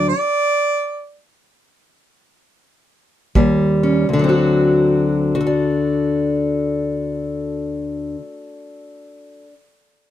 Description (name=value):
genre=acoustic country blues, solo or duo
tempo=free time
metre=none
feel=none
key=D mixolydian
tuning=A4 = 439 Hz
part: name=warm harmonica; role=melody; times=0.0-1.2 s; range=D5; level=-17 LUFS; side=right 2 dB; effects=none
part: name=fingerpicked steel-string acoustic guitar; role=accompaniment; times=0.0-9.5 s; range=D2 to D5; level=-16 LUFS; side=left 2 dB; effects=none
part: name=kick drum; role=drums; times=3.4-3.6 s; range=none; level=-17 LUFS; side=right 2 dB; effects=none
room=moderate booth ambience, RT60 0.2 s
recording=dark, warm production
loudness=-16 LUFS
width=side -12 dB against mid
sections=0.0-4.1 A section; 4.1-10.1 B section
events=slowing down 0.0-4.1; stop 0.0-3.4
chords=0.0 D; 3.4 Eb7; 4.1 D7